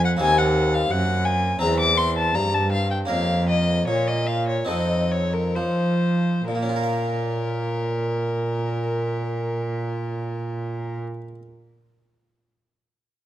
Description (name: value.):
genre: classical, baroque-style sonata movement with continuo.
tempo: 64-88 BPM.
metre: 4/4.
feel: straight.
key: Bb minor.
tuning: A4 = 439 Hz.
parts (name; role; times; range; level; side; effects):
rich violin; melody; 0.0-11.0 s; Bb4 to D6; -25 LUFS; left 3 dB; none.
harpsichord; accompaniment; 0.0-11.4 s; Eb2 to F5; -28 LUFS; equal; none.
warm cello; bass; 0.0-11.0 s; Eb2 to F3; -24 LUFS; right 2 dB; none.
room: moderate recital hall reverb, RT60 1.6 s.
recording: none.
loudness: -20 LUFS.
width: side -12 dB against mid.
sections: 0.0-6.5 A section; 6.5-10.2 B section.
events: slowing down 0.0-6.5.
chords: 0.2 Cm7b5/Eb; 1.6 C/E; 3.1 Bbm/F; 4.7 F7; 6.5 Bbm.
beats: | 0.20 0.90 1.61 2.34 | 3.09 3.87 4.69 5.56 | 6.49 7.43 8.37 9.30.